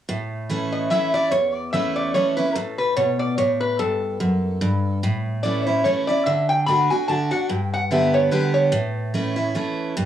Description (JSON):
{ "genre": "bluegrass", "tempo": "146 BPM", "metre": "3/4", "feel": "swing 56% on 8ths", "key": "A mixolydian", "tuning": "A4 = 441 Hz", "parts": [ { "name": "picked steel-string acoustic guitar", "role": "accompaniment", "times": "0.1-10.1 s", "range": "E2 to G4", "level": "-22 LUFS", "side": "right 1 dB", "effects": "cassette tape" }, { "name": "lap resonator guitar", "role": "melody", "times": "0.7-8.9 s", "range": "A4 to B5", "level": "-22 LUFS", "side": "left 1 dB", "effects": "cassette tape" } ], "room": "moderate booth ambience, RT60 0.2 s", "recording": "home recording on cassette, studio ambience", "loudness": "-19 LUFS", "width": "side -10 dB against mid", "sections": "0.1-10.0 A section", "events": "none", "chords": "0.1 A; 3.8 F#m; 5.0 A; 6.3 D; 7.5 G; 8.7 A", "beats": "| 0.09 0.50 0.91 | 1.32 1.73 2.15 | 2.56 2.97 3.38 | 3.79 4.21 4.62 | 5.03 5.44 5.85 | 6.26 6.67 7.08 | 7.50 7.91 8.32 | 8.73 9.14 9.55 | 9.96" }